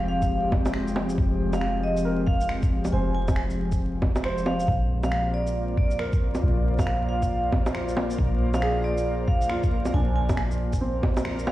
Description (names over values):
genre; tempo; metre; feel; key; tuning
future garage; 137 BPM; 4/4; swing 62% on 16ths; unclear; A4 = 443 Hz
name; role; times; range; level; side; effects
warm upright piano; accompaniment; 0.0-11.5 s; C4 to C5; -34 LUFS; right 2 dB; sidechain pumping, analog delay
airy breathy pad; sustained chords; 0.0-11.5 s; F3 to D5; -30 LUFS; left 1 dB; chorus, sidechain pumping
soft 808-style bass; bass; 0.0-11.5 s; F1 to Bb1; -27 LUFS; equal; tube saturation
vibraphone with medium hard mallets; melody; 0.1-11.5 s; D5 to Ab5; -30 LUFS; right 1 dB; analog delay
electronic kick drum; drums; 0.2-11.1 s; none; -25 LUFS; equal; studio reverb
electronic shaker, bongos and finger snaps; drums; 0.2-11.5 s; none; -31 LUFS; right 1 dB; studio reverb
backwards swelling texture; texture; 5.6-11.5 s; Bb3 to Bb4; -38 LUFS; left 2 dB; built-in reverb
room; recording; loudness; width
light reverb, digital ambience; played on a big sound system in a bare room, large studio reverb, vinyl crackle; -22 LUFS; side -15 dB against mid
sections
0.0-11.5 A section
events
band accent 11.3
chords
0.0 Fm; 4.7 Bb7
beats
0.30 0.74 | 1.18 1.62 2.05 2.49 | 2.93 3.37 3.81 4.24 | 4.68 5.12 5.56 6.00 | 6.43 6.87 7.31 7.75 | 8.19 8.62 9.06 9.50 | 9.94 10.38 10.81 11.25